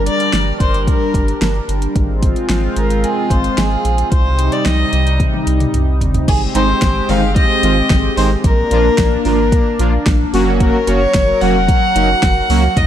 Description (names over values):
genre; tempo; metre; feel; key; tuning
synth-pop; 111 BPM; 4/4; straight; unclear; A4 = 441 Hz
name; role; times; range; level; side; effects
warm fiddle; melody; 0.0-12.9 s; Ab4 to Gb5; -18 LUFS; left 1 dB; digital delay
chorused pulse-width pad; sustained chords; 0.0-12.9 s; C3 to Bb4; -20 LUFS; left 1 dB; none
round analog bass; bass; 0.0-12.9 s; F1 to Eb2; -17 LUFS; equal; none
deep house drum kit; drums; 0.1-12.9 s; crash cymbal, hi-hat, kick drum, snare drum, toms; -17 LUFS; equal; none
analog synth brass; accompaniment; 6.5-12.6 s; Eb3 to Gb4; -19 LUFS; right 2 dB; chorus
room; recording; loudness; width
light reverb; dark, warm production; -12 LUFS; side -10 dB against mid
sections
0.0-6.3 A section; 6.3-12.9 B section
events
drum fill 5.2-6.3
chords
0.0 Gm; 2.0 Fm/Ab; 4.1 Cm; 6.3 Abmaj7; 8.4 Bb; 10.3 Gb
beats
0.33 0.87 1.41 | 1.96 2.50 3.04 3.58 | 4.12 4.66 5.20 5.74 | 6.28 6.82 7.36 7.90 | 8.44 8.98 9.52 10.06 | 10.60 11.14 11.69 12.22 | 12.77